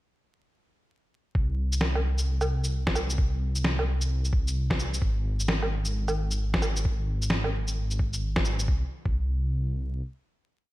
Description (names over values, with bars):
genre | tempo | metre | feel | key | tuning
future garage | 131 BPM | 4/4 | swing 63% on 16ths | unclear | A4 = 440 Hz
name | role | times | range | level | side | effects
dark detuned saw bass | bass | 1.3-10.0 s | Ab1 to C2 | -27 LUFS | equal | tube saturation, sidechain pumping
electronic kick drum | drums | 1.4-9.2 s | none | -27 LUFS | equal | studio reverb
electronic shaker, snare drum and woodblock | drums | 1.7-8.7 s | none | -30 LUFS | equal | studio reverb, gated reverb
room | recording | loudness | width
light reverb, digital ambience | bright 1980s-style digital production, vinyl crackle | -25 LUFS | side -17 dB against mid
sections
1.4-8.7 groove; 8.7-10.7 final note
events
none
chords
none